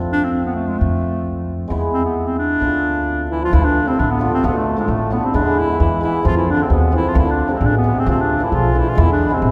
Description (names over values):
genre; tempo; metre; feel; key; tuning
klezmer; 132 BPM; 2/4; straight; D dorian sharp4; A4 = 440 Hz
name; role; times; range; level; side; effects
hammered dulcimer; accompaniment; 0.0-9.5 s; G#3 to G#4; -24 LUFS; equal; none
upright bass; bass; 0.0-9.5 s; A1 to F2; -22 LUFS; equal; none
warm clarinet; melody; 0.1-9.5 s; G#3 to F4; -22 LUFS; equal; none
bright trombone; second line; 3.3-9.5 s; G#2 to F3; -27 LUFS; equal; none
room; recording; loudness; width
wet church reverb, RT60 3.2 s; recorded in a church or concert hall; -17 LUFS; mono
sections
0.0-3.5 A section; 3.5-9.5 B section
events
none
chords
0.0 F; 1.7 E; 2.6 Dm; 5.3 E; 6.3 F; 7.2 Dm; 9.0 E